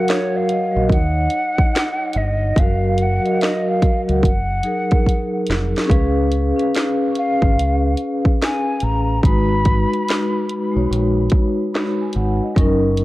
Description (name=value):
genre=lo-fi hip hop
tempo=72 BPM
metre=4/4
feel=swing 65% on 16ths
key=F# major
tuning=A4 = 440 Hz
part: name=breathy mellow silver concert flute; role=melody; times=0.0-10.9 s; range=C#5 to B5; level=-23 LUFS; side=equal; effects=low-pass filter, analog delay
part: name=vibraphone with medium mallets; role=accompaniment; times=0.0-13.0 s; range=F#3 to B5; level=-20 LUFS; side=left 1 dB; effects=low-pass filter
part: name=house drum kit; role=drums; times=0.1-13.0 s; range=finger snaps, hi-hat, kick drum, snare drum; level=-18 LUFS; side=equal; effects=none
part: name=deep dub fingered electric bass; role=bass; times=0.8-13.0 s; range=E#1 to D#2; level=-20 LUFS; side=equal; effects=none
room=digital ambience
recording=worn, warbling old tape, cassette tape, warbly pitch drift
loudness=-16 LUFS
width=side -17 dB against mid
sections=0.0-5.9 A section; 5.9-13.0 B section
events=drum fill 5.1-5.9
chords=0.0 F#maj7; 0.9 D#m7; 2.6 F#maj7; 4.2 F#69; 5.9 C#7; 9.2 G#m7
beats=0.06 0.90 1.73 | 2.56 3.40 4.23 5.06 | 5.90 6.73 7.56 8.40 | 9.23 10.06 10.90 11.73 | 12.56